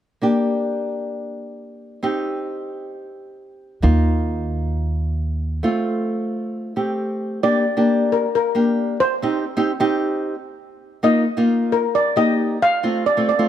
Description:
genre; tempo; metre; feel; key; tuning
calypso; 133 BPM; 4/4; straight; G minor; A4 = 440 Hz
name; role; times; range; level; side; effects
nylon-string guitar; accompaniment; 0.2-13.5 s; A3 to G4; -20 LUFS; equal; none
upright bass; bass; 3.8-5.6 s; Eb2; -19 LUFS; equal; none
steel pan; melody; 7.4-13.5 s; Bb4 to F5; -19 LUFS; left 1 dB; none
room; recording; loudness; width
moderate plate reverb, RT60 2.8 s; none; -18 LUFS; side -10 dB against mid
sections
0.2-7.4 A section; 7.4-13.5 B section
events
break 5.6-7.4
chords
0.2 Gm; 2.0 Cm; 3.8 Ebsus2; 5.6 F; 7.4 Gm; 9.2 Cm; 11.0 Ebsus2; 12.8 F6

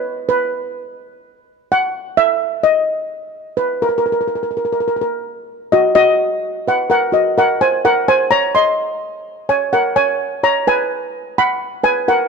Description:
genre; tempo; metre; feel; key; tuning
calypso; 127 BPM; 4/4; straight; B major; A4 = 442 Hz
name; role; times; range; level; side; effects
steel pan; solo; 0.0-12.3 s; F#4 to B#5; -14 LUFS; equal; none
room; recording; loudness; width
moderate plate reverb, RT60 2.8 s; dark, warm production; -14 LUFS; side -5 dB against mid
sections
0.0-5.7 A section; 5.7-12.3 B section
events
none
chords
0.0 N.C.; 5.7 B (rootless); 7.6 A#9sus4; 9.5 C#5; 11.4 F#sus4

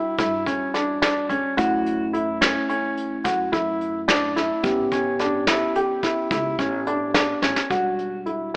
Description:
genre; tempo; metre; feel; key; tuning
progressive instrumental, band music in an uneven meter; 216 BPM (eighths); 11/8; straight; E dorian; A4 = 437 Hz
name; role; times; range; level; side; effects
mellow tine electric piano; accompaniment; 0.0-8.6 s; G3 to G4; -30 LUFS; equal; none
warm baby grand piano; arpeggios; 0.0-8.5 s; C#4 to G4; -25 LUFS; equal; none
upright bass; bass; 0.2-8.6 s; E1 to G2; -37 LUFS; equal; none
soft brush drum kit; drums; 0.2-8.4 s; hi-hat, kick drum, snare drum; -26 LUFS; equal; none
tube shaker; percussion; 0.2-7.6 s; none; -53 LUFS; equal; none
room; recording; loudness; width
moderate plate reverb, RT60 2.2 s; AM radio sound; -23 LUFS; mono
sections
0.0-7.7 A section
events
drum fill 7.4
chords
0.0 Em7; 1.6 F#m7; 4.6 A7; 7.7 Em7

